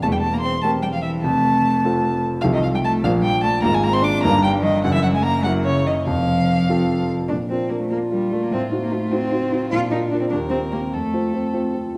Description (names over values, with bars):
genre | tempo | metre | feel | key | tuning
quick classical-period movement for piano trio | 100 BPM (dotted quarters) | 6/8 | straight | Bb major | A4 = 440 Hz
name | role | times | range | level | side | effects
rich violin | melody | 0.0-11.9 s | D4 to D6 | -26 LUFS | equal | none
warm cello | second line | 0.0-11.5 s | Db3 to F4 | -26 LUFS | equal | none
warm grand piano | accompaniment | 0.0-12.0 s | E1 to C5 | -23 LUFS | equal | none
room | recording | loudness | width
wet recital hall reverb, RT60 1.6 s | none | -20 LUFS | mono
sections
0.0-7.3 A section; 7.3-12.0 B section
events
none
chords
0.0 C7/E; 1.2 F; 2.4 F7/C; 3.0 Bb; 3.6 Bb5/Ab; 4.2 Eb/G; 4.8 Gb7; 6.1 F; 7.3 Bb; 8.5 Adim7; 9.7 Bb; 10.3 Cm/Eb; 10.9 F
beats
| 0.03 0.63 | 1.25 1.84 | 2.44 3.04 | 3.63 4.23 | 4.83 5.44 | 6.06 6.68 | 7.30 7.92 | 8.52 9.12 | 9.71 10.32 | 10.93 11.54